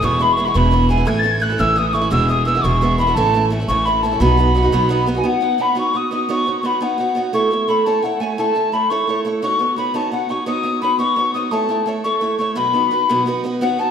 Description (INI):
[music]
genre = celtic folk, Celtic jig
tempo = 115 BPM (dotted quarters)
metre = 6/8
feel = straight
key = B mixolydian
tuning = A4 = 440 Hz
[part]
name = mellow hollow mid whistle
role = melody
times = 0.0-13.9 s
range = F#5 to A6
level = -18 LUFS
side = left 2 dB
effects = none
[part]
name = picked acoustic archtop guitar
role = accompaniment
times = 0.0-13.9 s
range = E2 to C#5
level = -20 LUFS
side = right 3 dB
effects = none
[part]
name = upright bass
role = bass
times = 0.0-5.2 s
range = E1 to B1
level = -19 LUFS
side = equal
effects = none
[sound]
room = wet recital hall reverb, RT60 1.5 s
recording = minimal, uncompressed stereo recording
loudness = -15 LUFS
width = side -8 dB against mid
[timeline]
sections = 0.0-5.2 A section; 5.2-13.6 B section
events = none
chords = 0.0 E; 1.1 A; 2.1 E; 3.2 A; 4.2 B; 5.2 Badd9; 7.3 A; 9.4 Badd9; 11.5 A; 12.6 B